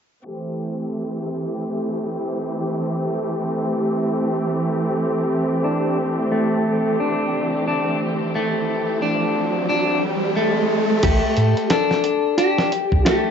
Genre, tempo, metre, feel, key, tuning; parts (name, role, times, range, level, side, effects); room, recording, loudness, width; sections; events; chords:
trip hop; 89 BPM; 4/4; swing 59% on 16ths; A minor; A4 = 439 Hz
bright symphonic string section; sustained chords; 0.3-11.0 s; E3 to G4; -22 LUFS; right 1 dB; vintage 12-bit sampler grit
electric guitar at the edge of break-up; arpeggios; 5.6-13.3 s; A3 to D4; -22 LUFS; left 1 dB; wide subtle chorus, ping-pong delay
riser; sound effects; 7.8-11.0 s; -25 LUFS; right 2 dB
mellow electric guitar; melody; 11.0-13.3 s; G4 to A4; -20 LUFS; left 3 dB
soft dub sub bass; bass; 11.0-13.0 s; A1 to A2; -19 LUFS; equal
dusty soul sampler-style drum kit; drums; 11.0-13.3 s; crash cymbal, hi-hat, kick drum, snare drum; -22 LUFS; equal; vintage 12-bit sampler grit
moderate echo chamber reverb, RT60 2.3 s; low-pass filter, nothing above 7.7 kHz; -18 LUFS; side -7 dB against mid
0.3-11.0 A section; 11.0-13.3 B section
filter sweep 0.3-11.0; riser 7.8-11.0
0.3 Am7; 11.0 A7(no3)